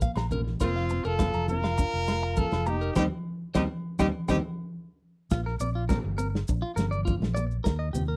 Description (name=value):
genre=highlife guitar band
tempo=102 BPM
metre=4/4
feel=straight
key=Bb major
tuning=A4 = 436 Hz
part: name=fingerpicked steel-string acoustic guitar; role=accompaniment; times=0.0-8.1 s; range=Eb3 to D4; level=-36 LUFS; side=equal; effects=none
part: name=clean electric guitar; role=arpeggios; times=0.0-8.2 s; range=F4 to Bb5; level=-37 LUFS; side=equal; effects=slapback echo
part: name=fingered electric bass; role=bass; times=0.0-8.2 s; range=F1 to Eb2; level=-32 LUFS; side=equal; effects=none
part: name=warm soul drum kit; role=drums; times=0.0-7.8 s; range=kick drum, snare drum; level=-31 LUFS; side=equal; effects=none
part: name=maracas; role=percussion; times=0.0-8.1 s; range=none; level=-48 LUFS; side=equal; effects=none
part: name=agogo bells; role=percussion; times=0.2-4.4 s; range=none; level=-46 LUFS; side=equal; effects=none
part: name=congas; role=percussion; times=0.3-8.1 s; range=none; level=-37 LUFS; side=equal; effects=none
part: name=clear trumpet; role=melody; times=0.6-4.4 s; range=F4 to Bb4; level=-33 LUFS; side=equal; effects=none
part: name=breathy alto saxophone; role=second line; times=0.6-4.4 s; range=C4 to F4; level=-37 LUFS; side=equal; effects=none
room=light reverb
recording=dry, close 1970s-style studio recording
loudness=-28 LUFS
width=mono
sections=0.0-5.3 A section; 5.3-8.2 B section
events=band accent 3.0-5.3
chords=0.0 Bb5; 0.6 Fsus4; 3.0 Cm/Eb; 5.3 Bb; 7.7 Eb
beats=0.01 | 0.60 1.19 1.78 2.37 | 2.95 3.54 4.13 4.72 | 5.30 5.89 6.48 7.07 | 7.65